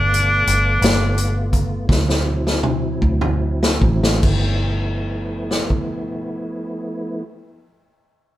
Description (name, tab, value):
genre	slow blues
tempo	48-59 BPM (dotted quarters)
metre	12/8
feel	straight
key	G mixolydian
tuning	A4 = 437 Hz
part	clear tenor saxophone	melody	0.0-1.5 s	D4	-18 LUFS	left 1 dB	none
part	tonewheel organ	sustained chords	0.0-7.2 s	F3 to F4	-26 LUFS	equal	chorus vibrato, slow rotary speaker
part	vintage muted fingered electric bass	bass	0.0-7.2 s	G1 to D2	-20 LUFS	equal	none
part	vintage drum kit	drums	0.1-5.9 s	crash cymbal, hi-hat, kick drum, snare drum, toms	-20 LUFS	equal	none
room	light reverb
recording	band playing live in one room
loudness	-17 LUFS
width	side -14 dB against mid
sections	0.0-4.2 A section; 4.2-8.4 B section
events	slowing down 0.0-4.2; tenor saxophone solo 0.0-4.2; drum fill 1.9-4.2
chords	0.0 G9; 1.9 D9; 4.2 G13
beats	0.82 1.90 3.03 | 4.24 5.50 6.75